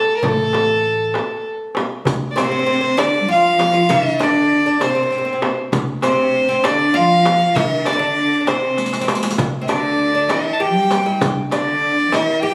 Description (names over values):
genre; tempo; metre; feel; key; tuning
Arabic maqam ensemble; 66 BPM (dotted quarters); 6/8; straight; D maqam bayati; A4 = 440 Hz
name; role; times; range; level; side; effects
rich violin; melody; 0.0-12.5 s; A4 to A5; -20 LUFS; equal; none
oud; second line; 0.0-12.5 s; A3 to G4; -25 LUFS; equal; none
upright bass; bass; 0.2-12.1 s; A1 to D3; -31 LUFS; equal; none
darbuka; percussion; 0.2-12.5 s; none; -29 LUFS; equal; none
frame drum; percussion; 0.2-12.3 s; none; -26 LUFS; equal; none
riq; percussion; 2.1-12.5 s; none; -31 LUFS; equal; none
rich symphonic cello section; second line; 2.4-12.5 s; C3 to G3; -25 LUFS; equal; none
room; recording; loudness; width
moderate recital hall reverb, RT60 1.4 s; recorded on a phone in the room, studio ambience, compression; -17 LUFS; mono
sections
0.0-2.1 A section; 2.1-12.5 B section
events
drum fill 8.8-9.4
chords
none